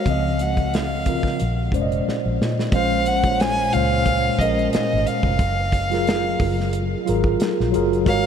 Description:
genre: R&B, neo-soul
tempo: 90 BPM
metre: 4/4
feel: swing 54% on 16ths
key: Bb minor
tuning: A4 = 440 Hz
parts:
  - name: warm violin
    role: melody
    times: 0.0-8.3 s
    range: Eb5 to Ab5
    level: -24 LUFS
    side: equal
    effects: tape echo
  - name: mellow tine electric piano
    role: accompaniment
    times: 0.0-8.3 s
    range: Bb2 to Eb5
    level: -22 LUFS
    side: equal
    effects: medium stereo tremolo
  - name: vintage muted fingered electric bass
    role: bass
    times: 0.1-8.3 s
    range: F1 to Bb2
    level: -24 LUFS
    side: equal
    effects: none
  - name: warm soul drum kit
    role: drums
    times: 0.1-8.2 s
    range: hi-hat, kick drum, snare drum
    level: -25 LUFS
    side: equal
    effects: none
room: moderate huge ambient reverb, RT60 7.3 s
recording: dreamy mix soaked in reverb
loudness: -18 LUFS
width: side -8 dB against mid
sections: 0.0-2.7 A section; 2.7-8.3 B section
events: drum fill 2.1-2.7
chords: 0.1 Dbmaj9; 1.4 Bbm11; 2.7 Bbm9; 5.4 Gbmaj9

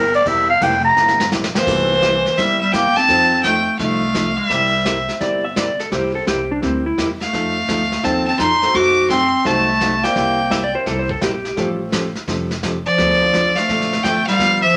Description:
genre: country, western swing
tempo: 170 BPM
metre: 4/4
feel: swing 66% on 8ths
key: C mixolydian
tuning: A4 = 440 Hz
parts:
  - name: growling clarinet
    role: second line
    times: 0.0-5.1, 7.2-14.8 s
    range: E3 to Bb5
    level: -20 LUFS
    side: equal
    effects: none
  - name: vintage hollow-body jazz guitar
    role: accompaniment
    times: 0.0-14.8 s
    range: C3 to A4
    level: -28 LUFS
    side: equal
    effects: none
  - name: upright bass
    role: bass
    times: 0.0-14.7 s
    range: E1 to F#2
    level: -31 LUFS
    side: equal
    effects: none
  - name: vintage brush drum kit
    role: drums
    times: 0.1-14.8 s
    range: brushed snare drum, crash cymbal, hi-hat, kick drum, ride cymbal, snare drum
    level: -28 LUFS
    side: equal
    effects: none
  - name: warm upright piano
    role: accompaniment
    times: 1.0-14.0 s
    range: A3 to D5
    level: -30 LUFS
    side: equal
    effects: none
  - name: clear fiddle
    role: melody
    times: 1.6-5.1, 7.2-10.7, 12.9-14.8 s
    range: C5 to D6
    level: -19 LUFS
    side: equal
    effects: none
  - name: clean lap steel guitar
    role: second line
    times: 4.9-7.1, 10.5-11.7 s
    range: C4 to E5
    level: -24 LUFS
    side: equal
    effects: none
room: wet studio reverb, RT60 0.5 s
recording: none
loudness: -17 LUFS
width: mono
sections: 0.0-1.7 A section; 1.7-14.8 B section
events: clarinet solo 0.0-1.7; drum fill 1.0-1.7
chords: 0.0 C7; 3.1 F7; 4.5 C7; 7.3 F7; 8.7 F#dim7; 10.2 C7; 11.6 A7alt; 13.0 Dm7

